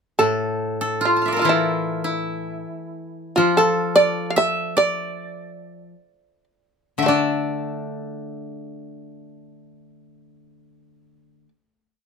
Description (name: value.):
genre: japanese traditional, Japanese chamber music.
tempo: 48-79 BPM.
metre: 2/4.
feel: rubato.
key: D hirajoshi.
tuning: A4 = 440 Hz.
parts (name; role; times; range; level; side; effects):
shamisen; melody; 0.2-11.5 s; E4 to F5; -19 LUFS; right 1 dB; none.
koto; second line; 0.2-11.5 s; E4 to A5; -24 LUFS; right 2 dB; none.
koto; accompaniment; 0.2-11.5 s; A2 to D4; -26 LUFS; left 6 dB; none.
room: light reverb.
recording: close, detailed microphones.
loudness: -18 LUFS.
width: side -6 dB against mid.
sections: 0.2-7.1 A section; 7.1-11.9 final chord.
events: slowing down 3.4-7.1.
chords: none.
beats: | 0.19 1.03 | 1.84 2.61 | 3.37 4.15 | 4.97 5.92 | 7.07 8.29 | 9.47 10.66.